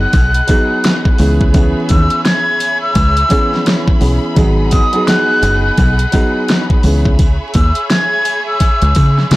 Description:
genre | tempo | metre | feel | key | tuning
hip hop, boom-bap hip-hop | 85 BPM | 4/4 | swing 61% on 16ths | unclear | A4 = 445 Hz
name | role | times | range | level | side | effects
silver concert flute | melody | 0.0-9.3 s | D#6 to G#6 | -16 LUFS | equal | high-pass filter, low-pass filter, tape echo
dark baby grand piano | accompaniment | 0.0-7.2 s | E3 to G#4 | -18 LUFS | right 1 dB | cassette tape, high-pass filter, low-pass filter
clear studio string section | sustained chords | 0.0-9.4 s | G#4 to B5 | -24 LUFS | equal | high-pass filter, low-pass filter
deep dub fingered electric bass | bass | 0.0-9.4 s | F#1 to C#3 | -13 LUFS | equal | tube saturation
pop drum kit | drums | 0.1-9.4 s | hi-hat, kick drum, snare drum | -13 LUFS | equal | overdrive
sleigh bells | percussion | 0.1-9.4 s | none | -35 LUFS | left 4 dB | none
room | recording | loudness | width
studio reverb | blown-out, overdriven recording, vinyl crackle, overdrive | -10 LUFS | side -18 dB against mid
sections
0.0-9.4 A section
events
none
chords
0.0 G#m7; 1.2 C#m7; 4.4 G#m7; 6.8 C#m7

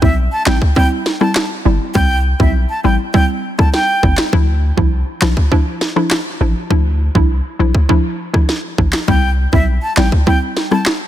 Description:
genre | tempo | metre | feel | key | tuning
dancehall | 101 BPM | 4/4 | straight | C major | A4 = 439 Hz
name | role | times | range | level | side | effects
breathy bright jazz flute | melody | 0.0-4.2, 9.1-10.8 s | E5 to A5 | -20 LUFS | right 1 dB | ping-pong delay
hollow square pluck | accompaniment | 0.0-10.8 s | F3 to E4 | -18 LUFS | equal | chorus
warm 808-style bass | bass | 0.0-10.1 s | G1 to D2 | -15 LUFS | equal | none
island pop drum kit | drums | 0.0-11.0 s | handclaps, kick drum, rim click, snare drum | -15 LUFS | equal | overdrive
room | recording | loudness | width
digital ambience | dense, heavily limited modern master | -12 LUFS | side -12 dB against mid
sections
0.0-11.1 A section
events
none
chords
0.0 C; 4.3 Dmadd9; 9.1 C

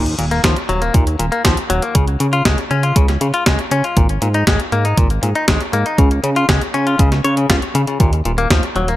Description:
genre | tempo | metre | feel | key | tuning
italo disco | 119 BPM | 4/4 | straight | Db major | A4 = 440 Hz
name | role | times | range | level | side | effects
direct-recorded clean electric guitar | arpeggios | 0.0-9.0 s | Bb2 to Db5 | -19 LUFS | left 3 dB | ping-pong delay
fat analog bass | bass | 0.0-9.0 s | Eb1 to Db3 | -18 LUFS | equal | none
clean 12-bit digital drum machine | drums | 0.1-9.0 s | hi-hat, snare drum | -20 LUFS | equal | overdrive, gated reverb
electronic kick drum | drums | 0.4-8.6 s | none | -15 LUFS | equal | overdrive
room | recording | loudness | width
digital ambience | none | -13 LUFS | side -15 dB against mid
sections
0.0-9.0 A section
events
none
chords
0.0 Ebmadd9; 2.0 Db; 4.0 Absus2; 6.0 Db; 8.0 Ebmadd9

